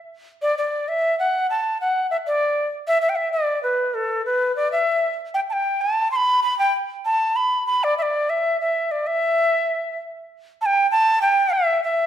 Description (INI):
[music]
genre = andean folk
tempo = 97 BPM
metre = 2/4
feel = straight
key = E minor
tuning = A4 = 444 Hz
[part]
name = reedy quena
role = solo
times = 0.4-12.1 s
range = A4 to C6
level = -19 LUFS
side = equal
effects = none
[sound]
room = wet recital hall reverb, RT60 1.3 s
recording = none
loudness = -19 LUFS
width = side -10 dB against mid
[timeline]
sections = 0.4-10.3 A section; 10.3-12.1 B section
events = none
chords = none